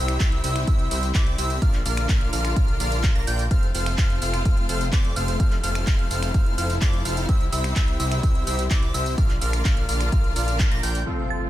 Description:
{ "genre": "EDM, festival progressive house", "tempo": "127 BPM", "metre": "4/4", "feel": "straight", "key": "F major", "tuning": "A4 = 435 Hz", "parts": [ { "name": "warm studio string section", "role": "sustained chords", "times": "0.0-11.5 s", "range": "C3 to F4", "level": "-32 LUFS", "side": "left 3 dB", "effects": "sidechain pumping, low-pass filter" }, { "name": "plucky unison lead", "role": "arpeggios", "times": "0.0-11.0 s", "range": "D6 to Bb6", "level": "-31 LUFS", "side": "equal", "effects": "sidechain pumping, ping-pong delay" }, { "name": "supersaw chords", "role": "riff", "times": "0.0-11.5 s", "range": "C4 to Bb5", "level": "-31 LUFS", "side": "equal", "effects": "sidechain pumping, low-pass filter, ping-pong delay" }, { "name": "fat analog bass", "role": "bass", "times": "0.0-11.0 s", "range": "F1 to F2", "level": "-26 LUFS", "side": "equal", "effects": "sidechain pumping" }, { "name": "house drum kit", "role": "drums", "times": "0.1-11.5 s", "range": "crash cymbal, finger snaps, handclaps, hi-hat, tambourine", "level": "-31 LUFS", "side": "right 2 dB", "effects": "low-pass filter on hats, studio reverb, low-pass filter on perc, low-pass filter on snare, low-pass filter on cymbals" }, { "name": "electronic kick drum", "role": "drums", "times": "0.2-10.7 s", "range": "none", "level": "-21 LUFS", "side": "equal", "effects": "studio reverb" }, { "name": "clear concert grand piano", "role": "accompaniment", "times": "11.1-11.5 s", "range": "F3 to A4", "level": "-31 LUFS", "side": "right 1 dB", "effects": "sidechain pumping" }, { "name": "impact", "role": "sound effects", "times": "11.1-11.5 s", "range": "none", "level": "-28 LUFS", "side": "equal", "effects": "none" }, { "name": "glassy synth bell", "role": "melody", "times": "11.3-11.5 s", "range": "A6", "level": "-30 LUFS", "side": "right 8 dB", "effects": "chorus, phaser" } ], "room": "digital ambience", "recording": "none", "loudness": "-20 LUFS", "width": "side -14 dB against mid", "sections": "0.0-11.1 A section", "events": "drop 0.0-11.1; band accent 10.6; impact 11.1-11.5", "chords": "0.0 C; 1.6 Bb; 3.5 F; 7.3 C; 9.2 Bb" }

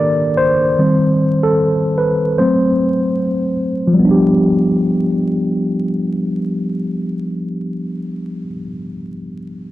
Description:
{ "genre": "hip hop", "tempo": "75 BPM", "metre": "4/4", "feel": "swing 64% on 16ths", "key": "unclear", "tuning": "A4 = 440 Hz", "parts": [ { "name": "mellow tine electric piano", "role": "accompaniment", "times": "0.0-9.7 s", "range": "Eb3 to D5", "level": "-14 LUFS", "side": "equal", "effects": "medium stereo tremolo, cassette tape, low-pass filter" } ], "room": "light reverb", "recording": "dark, warm production, vinyl crackle, faint mains hum", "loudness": "-14 LUFS", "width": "side -15 dB against mid", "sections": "0.0-4.0 A section; 4.0-7.2 B section", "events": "tine electric piano solo 0.0-4.0; filter sweep on tine electric piano 0.0-4.0", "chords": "0.0 Ebmaj7#11; 0.8 Am9b5/Eb; 2.4 F#dim; 4.0 G7" }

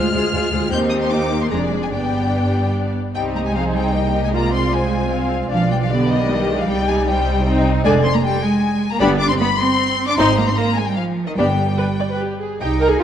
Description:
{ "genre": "quick classical-period movement for string orchestra", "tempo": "153 BPM", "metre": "3/4", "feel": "straight", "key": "C minor", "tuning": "A4 = 440 Hz", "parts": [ { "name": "clear chamber violin section", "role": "melody", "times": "0.0-13.0 s", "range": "D5 to G6", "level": "-23 LUFS", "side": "left 5 dB", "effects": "none" }, { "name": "rich chamber violin section", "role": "second line", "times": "0.0-13.0 s", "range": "Eb4 to G5", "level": "-24 LUFS", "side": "left 2 dB", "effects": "none" }, { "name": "rich chamber viola section", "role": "accompaniment", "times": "0.0-13.0 s", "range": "D3 to D5", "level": "-21 LUFS", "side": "equal", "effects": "none" }, { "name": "clear chamber double bass section", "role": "bass", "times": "0.1-13.0 s", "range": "F1 to Eb2", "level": "-23 LUFS", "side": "right 2 dB", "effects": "none" }, { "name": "clear symphonic cello section", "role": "bass", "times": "0.1-13.0 s", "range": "D2 to Eb4", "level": "-22 LUFS", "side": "right 2 dB", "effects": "none" } ], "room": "moderate scoring stage reverb, RT60 2.0 s", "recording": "dark, warm production", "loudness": "-16 LUFS", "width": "side -9 dB against mid", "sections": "0.0-3.2 A section; 3.2-12.6 B section", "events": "none", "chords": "0.0 Dm7b5; 0.7 Cm/Eb; 1.5 Ddim/F; 1.9 G; 3.2 Cm; 4.3 Dm7b5/C; 5.5 G7/B; 6.7 Cm; 7.8 Ddim/F; 9.0 G; 10.2 Ab; 11.4 G" }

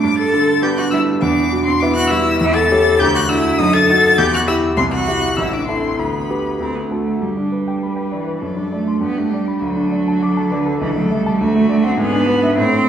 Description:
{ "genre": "quick classical-period movement for piano trio", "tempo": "101 BPM", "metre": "2/4", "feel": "straight", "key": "G major", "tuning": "A4 = 437 Hz", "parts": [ { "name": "warm violin", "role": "melody", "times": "0.0-12.6 s", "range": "E4 to A6", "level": "-21 LUFS", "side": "left 4 dB", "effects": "none" }, { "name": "clear cello", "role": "second line", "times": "0.0-12.9 s", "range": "D3 to A4", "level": "-18 LUFS", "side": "right 2 dB", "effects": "none" }, { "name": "clear concert grand piano", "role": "accompaniment", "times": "0.0-12.9 s", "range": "A1 to D6", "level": "-18 LUFS", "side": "equal", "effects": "none" } ], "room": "wet recital hall reverb, RT60 1.7 s", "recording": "heard from further back in the room", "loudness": "-14 LUFS", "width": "side -9 dB against mid", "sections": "0.0-7.2 A section; 7.2-12.9 B section", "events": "none", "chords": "0.0 G; 1.2 Em; 2.4 A7/E; 3.0 D; 3.6 F#m6; 4.2 Em; 4.8 C; 5.4 Am; 6.0 G/D; 6.6 D; 7.2 G; 8.4 D7/F#; 9.0 G; 9.6 D; 10.8 A7/C#; 11.4 D; 12.0 E7/G#" }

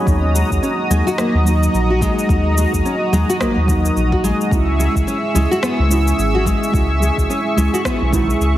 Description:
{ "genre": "organic downtempo", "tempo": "108 BPM", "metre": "4/4", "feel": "swing 59% on 16ths", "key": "unclear", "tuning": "A4 = 441 Hz", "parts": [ { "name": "muted felt-like synth keys", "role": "accompaniment", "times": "0.0-8.6 s", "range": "F#3 to E4", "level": "-22 LUFS", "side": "right 2 dB", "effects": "chorus, vintage 12-bit sampler grit, sidechain pumping, digital delay" }, { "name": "warm analog pad", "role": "sustained chords", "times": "0.0-8.6 s", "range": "F#4 to E6", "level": "-22 LUFS", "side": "equal", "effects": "chorus, sidechain pumping, shimmer reverb" }, { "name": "warm sub bass", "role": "bass", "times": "0.1-8.6 s", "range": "G#1 to D#2", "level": "-17 LUFS", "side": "equal", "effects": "tube saturation, sidechain pumping" }, { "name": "electronic kick drum", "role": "drums", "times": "0.1-8.3 s", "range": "none", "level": "-21 LUFS", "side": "equal", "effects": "overdrive" }, { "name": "electronic shaker and rim click", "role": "drums", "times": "0.1-8.5 s", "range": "none", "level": "-27 LUFS", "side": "left 1 dB", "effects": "overdrive" }, { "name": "nylon-string guitar", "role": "arpeggios", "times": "0.3-8.3 s", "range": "D#3 to F#4", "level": "-22 LUFS", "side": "left 1 dB", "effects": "digital delay, shimmer reverb" } ], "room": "moderate lush hall reverb, RT60 2.0 s", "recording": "heavily compressed radio sound", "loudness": "-14 LUFS", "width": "side -13 dB against mid", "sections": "0.1-8.6 A section", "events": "none", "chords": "0.1 D#m; 4.5 C#m" }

